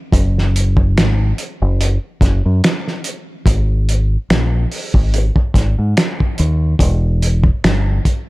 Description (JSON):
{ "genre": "R&B, neo-soul", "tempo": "72 BPM", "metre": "4/4", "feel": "swing 56% on 16ths", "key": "unclear", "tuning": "A4 = 440 Hz", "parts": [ { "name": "deep dub fingered electric bass", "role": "bass", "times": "0.1-8.0 s", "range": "E1 to G#2", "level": "-14 LUFS", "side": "equal", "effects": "none" }, { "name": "cloth-damped thuddy drum kit", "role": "drums", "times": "0.1-8.3 s", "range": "finger snaps, hi-hat, kick drum, snare drum", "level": "-16 LUFS", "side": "equal", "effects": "none" } ], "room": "little or no reverb", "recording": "none", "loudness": "-13 LUFS", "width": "side -20 dB against mid", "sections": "0.0-8.3 A section", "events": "none", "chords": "none" }